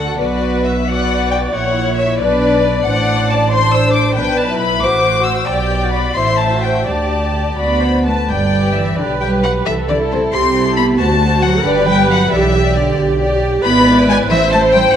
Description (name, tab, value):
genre	quick classical-period movement for string orchestra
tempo	90 BPM (dotted quarters)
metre	6/8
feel	rubato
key	G major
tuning	A4 = 440 Hz
part	warm chamber violin section	melody	0.0-14.9 s	C5 to E6	-18 LUFS	left 6 dB	none
part	warm chamber violin section	second line	0.0-14.9 s	D4 to E5	-21 LUFS	left 2 dB	none
part	warm chamber viola section	accompaniment	0.0-15.0 s	F#4 to D5	-18 LUFS	right 2 dB	none
part	dark chamber cello section	bass	0.0-14.8 s	D2 to C4	-19 LUFS	right 2 dB	none
part	warm chamber double bass section	bass	0.0-15.0 s	G1 to D2	-20 LUFS	right 2 dB	none
room	moderate scoring stage reverb, RT60 1.7 s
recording	dark, warm production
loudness	-12 LUFS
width	side -9 dB against mid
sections	0.0-8.3 A section; 8.3-15.0 B section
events	none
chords	0.2 Bm; 1.5 F#7/A#; 2.2 Bm; 2.9 D7/A; 4.2 G69/B; 4.8 F#dim/A; 5.5 G/B; 6.2 Am; 6.9 Dsus4; 7.6 D; 8.3 G; 9.0 G/B; 9.7 Am/C; 11.0 D7; 11.7 G; 12.3 G/B; 13.6 E7/G#; 14.3 Am